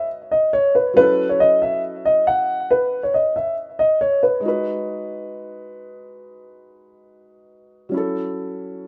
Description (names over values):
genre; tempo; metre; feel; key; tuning
hip hop; 138 BPM; 4/4; half-time; G# phrygian; A4 = 442 Hz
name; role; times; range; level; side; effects
dark concert grand piano; melody; 0.0-4.4 s; B4 to F#5; -18 LUFS; equal; plate reverb, delay
felt-muted upright piano; accompaniment; 0.0-8.9 s; F#3 to B4; -28 LUFS; equal; plate reverb
room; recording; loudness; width
moderate small room reverb, RT60 0.6 s; rough home demo mix; -19 LUFS; mono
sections
0.0-4.4 A section; 4.4-8.9 B section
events
none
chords
0.0 G#m7; 1.0 F#m7; 4.4 G#m7; 7.9 F#m7